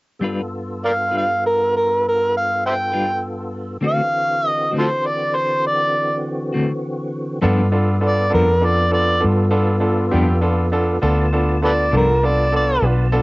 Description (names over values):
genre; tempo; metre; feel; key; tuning
slow blues; 67 BPM (dotted quarters); 12/8; straight; G mixolydian; A4 = 440 Hz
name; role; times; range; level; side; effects
clean electric guitar; accompaniment; 0.2-12.1 s; G2 to B4; -21 LUFS; left 2 dB; tremolo, cassette tape
tonewheel organ; sustained chords; 0.2-13.2 s; G2 to A5; -26 LUFS; equal; slow rotary speaker, overdrive, chorus vibrato, cassette tape
overdriven harmonica; melody; 0.8-12.8 s; F4 to G5; -18 LUFS; equal; cassette tape
bright upright piano; accompaniment; 7.4-13.2 s; B3 to B4; -21 LUFS; right 1 dB; cassette tape
vintage muted fingered electric bass; bass; 7.4-13.2 s; B1 to G2; -18 LUFS; equal; none
room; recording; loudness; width
light reverb; home recording on cassette, nothing above 7.7 kHz; -16 LUFS; side -23 dB against mid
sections
0.2-7.4 A section; 7.4-13.2 B section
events
none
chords
0.2 G7; 3.8 D7; 7.4 G7